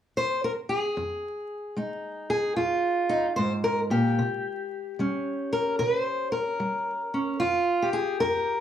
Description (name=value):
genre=acoustic country blues, solo or duo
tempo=74 BPM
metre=4/4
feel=swing 66% on 8ths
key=F minor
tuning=A4 = 440 Hz
part: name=fingerpicked steel-string acoustic guitar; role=solo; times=0.2-8.6 s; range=F2 to C5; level=-25 LUFS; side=equal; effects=none
room=moderate studio reverb, RT60 0.6 s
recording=vinyl crackle, small room ambience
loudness=-25 LUFS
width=side -10 dB against mid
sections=1.0-7.4 A section; 7.4-8.6 B section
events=none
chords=0.0 N.C.; 1.0 Fm7; 4.2 C5; 7.4 F5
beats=0.15 | 0.95 1.76 2.57 3.38 | 4.18 4.99 5.80 6.60 | 7.41 8.22